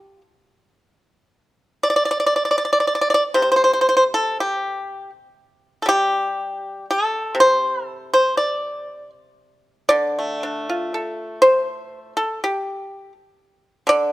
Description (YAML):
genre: chinese traditional, Chinese solo plucked strings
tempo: 60 BPM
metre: 2/4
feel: uneven beats, rubato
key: G shang mode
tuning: A4 = 440 Hz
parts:
  - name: pipa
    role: solo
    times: 0.0-14.1 s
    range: C3 to D5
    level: -17 LUFS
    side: equal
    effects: none
room: light reverb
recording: close, detailed microphones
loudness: -17 LUFS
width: side -17 dB against mid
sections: 0.0-1.3 A section; 1.3-14.1 B section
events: none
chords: none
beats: 0.25 | 1.30 2.35 | 3.37 4.38 | 5.37 6.38 | 7.38 8.37 | 9.39 10.43 | 11.44 12.42 | 13.39